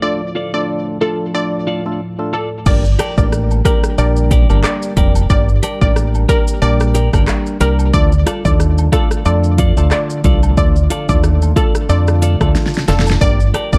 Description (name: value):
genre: dancehall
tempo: 91 BPM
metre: 4/4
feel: swing 56% on 16ths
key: G minor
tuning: A4 = 440 Hz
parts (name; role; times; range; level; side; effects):
- analog pluck; melody; 0.0-13.8 s; A4 to D5; -24 LUFS; equal; chorus, low-pass filter, digital delay
- percussive organ stab; accompaniment; 0.0-13.8 s; A3 to Bb4; -24 LUFS; equal; chorus, sidechain pumping, low-pass filter
- deep dark ambient pad; sustained chords; 0.0-13.8 s; D2 to Bb4; -29 LUFS; equal; none
- twelve-string electric guitar; arpeggios; 0.4-13.7 s; F4 to D5; -26 LUFS; equal; low-pass filter, digital delay
- deep dub fingered electric bass; bass; 2.7-13.8 s; F1 to F2; -16 LUFS; equal; none
- deep house drum kit; drums; 2.7-13.8 s; crash cymbal, handclaps, hi-hat, kick drum, rim click, shaker, snare drum; -18 LUFS; equal; overdrive
- cabasa and woodblock; percussion; 3.0-13.7 s; none; -33 LUFS; equal; none
room: digital ambience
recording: dark, warm production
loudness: -14 LUFS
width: mono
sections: 0.0-2.7 A section; 2.7-13.8 B section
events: drum fill 12.6-13.2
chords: 0.0 Dm; 2.7 Gm; 7.9 Dm; 13.2 Gm